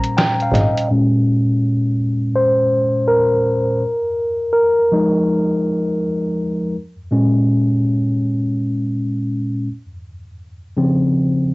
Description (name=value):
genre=lo-fi hip hop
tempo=82 BPM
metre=4/4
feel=swing 65% on 16ths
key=Bb dorian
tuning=A4 = 440 Hz
part: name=tine electric piano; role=accompaniment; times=0.0-11.5 s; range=Bb2 to Bb5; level=-15 LUFS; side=equal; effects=medium stereo tremolo, cassette tape, low-pass filter
part: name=lo-fi sampler-style drum kit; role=drums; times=0.0-0.9 s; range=hi-hat, snare drum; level=-20 LUFS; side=equal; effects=cassette tape
part: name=rich double bass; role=bass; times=0.5-0.6 s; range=Ab1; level=-16 LUFS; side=equal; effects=transformer saturation
room=wet studio reverb, RT60 0.6 s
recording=home recording on cassette, nothing above 8.0 kHz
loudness=-15 LUFS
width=side -22 dB against mid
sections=0.9-11.5 A section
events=tine electric piano solo 0.9-11.5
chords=0.0 Bbm69; 0.9 Bbm9; 3.8 Fm7; 6.7 Bbm7; 9.7 Dbmaj7